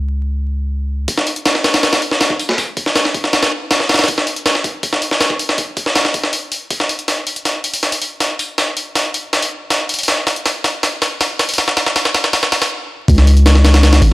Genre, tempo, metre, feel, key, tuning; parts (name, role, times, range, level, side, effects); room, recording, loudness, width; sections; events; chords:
drum and bass, jungle; 160 BPM; 4/4; straight; A4 = 440 Hz
long sustained 808-style bass; bass; 0.0-1.1, 13.1-14.1 s; G#1 to C#2; -10 LUFS; equal
breakbeat sampler-style drum kit; drums; 1.1-14.1 s; hi-hat, kick drum, snare drum; -14 LUFS; equal; high-pass filter on hats, studio reverb, high-pass filter on kick, high-pass filter on snare
light reverb; dry, gritty hardware recording, transformer saturation, vinyl crackle; -13 LUFS; side -18 dB against mid
0.0-1.1 A section; 1.1-13.1 B section; 13.1-14.1 C section
build-up 1.1-13.1; drum fill 7.1-12.7; stop 12.7-13.1; drop 13.1-14.1